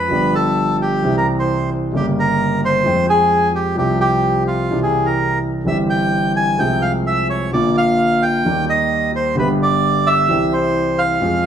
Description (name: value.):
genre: tango.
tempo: 130 BPM.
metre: 4/4.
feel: rubato.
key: unclear.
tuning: A4 = 440 Hz.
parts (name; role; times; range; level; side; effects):
bandoneon; melody; 0.0-11.5 s; F4 to Ab5; -17 LUFS; right 1 dB; none.
warm grand piano; accompaniment; 0.0-11.5 s; G1 to G5; -18 LUFS; equal; none.
room: wet large studio reverb, RT60 0.9 s.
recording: band playing live in one room.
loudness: -14 LUFS.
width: side -8 dB against mid.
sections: 0.0-11.5 A section.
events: none.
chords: 0.1 G7; 1.0 C; 1.9 Gdim; 2.9 Fmadd9; 3.8 Csus4; 4.7 C; 6.6 Fm/C; 7.5 Bb; 8.4 Eb; 9.4 G; 10.3 C.